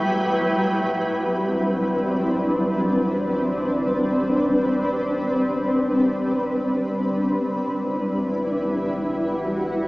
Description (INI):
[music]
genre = ambient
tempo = free time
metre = none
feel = none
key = A dorian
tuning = A4 = 436 Hz
[part]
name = granular cloud pad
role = sustained chords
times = 0.0-9.9 s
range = A2 to B4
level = -20 LUFS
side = equal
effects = built-in reverb, analog chorus
[part]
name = wind-like tuned noise texture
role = texture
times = 0.0-0.6 s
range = G5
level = -29 LUFS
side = right 1 dB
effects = built-in reverb
[part]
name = warm sub bass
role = bass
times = 0.5-9.9 s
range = A1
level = -43 LUFS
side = equal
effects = tube saturation
[sound]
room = wet lush hall reverb, RT60 2.9 s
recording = dreamy mix soaked in reverb, cassette tape, small speaker sound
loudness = -20 LUFS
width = side -21 dB against mid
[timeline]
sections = 0.5-9.9 A section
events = filter sweep on ambient pad 0.5-9.9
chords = 0.0 Emadd9/A; 0.5 Am11; 7.3 Emadd9/A